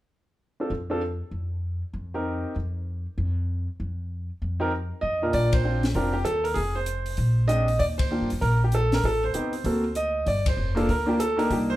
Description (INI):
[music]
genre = jazz piano trio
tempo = 195 BPM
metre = 4/4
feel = swing 63% on 8ths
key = unclear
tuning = A4 = 440 Hz
[part]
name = clear grand piano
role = melody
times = 0.6-2.5, 4.6-11.8 s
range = Bb2 to Eb5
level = -25 LUFS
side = right 1 dB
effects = plate reverb
[part]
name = upright bass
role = bass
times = 0.7-11.8 s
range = F1 to G2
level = -27 LUFS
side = equal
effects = none
[part]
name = compact cocktail drum kit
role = drums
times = 5.3-11.6 s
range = hi-hat, kick drum, ride cymbal, snare drum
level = -30 LUFS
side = left 1 dB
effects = none
[sound]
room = wet studio ambience, RT60 0.5 s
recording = heard from further back in the room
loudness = -23 LUFS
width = side -15 dB against mid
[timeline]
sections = 0.4-5.3 A section; 5.3-11.8 B section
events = band accent 5.5, 8.0, 10.4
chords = 0.4 N.C.; 4.1 Fsus4; 6.6 F5; 7.2 Bb13; 7.8 Eb; 9.0 Am7b5; 9.7 D7b13; 10.3 Gm7